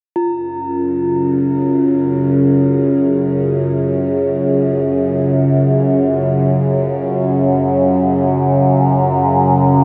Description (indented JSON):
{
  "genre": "dark ambient drone",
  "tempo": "free time",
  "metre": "none",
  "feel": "none",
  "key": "unclear",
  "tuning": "A4 = 439 Hz",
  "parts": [
    { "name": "overtone-sweeping drone", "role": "drone", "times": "0.7-9.8 s", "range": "F#2 to C#3", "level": "-15 LUFS", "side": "equal", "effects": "chorus, built-in reverb" },
    { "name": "bronze singing bowl", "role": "texture", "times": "0.2-9.8 s", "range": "E#4", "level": "-25 LUFS", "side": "equal", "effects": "shimmer reverb" }
  ],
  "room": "wet cathedral reverb, RT60 6.0 s",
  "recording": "none",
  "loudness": "-15 LUFS",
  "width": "mono",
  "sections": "0.2-9.8 A section",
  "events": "none",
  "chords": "0.2 F#5"
}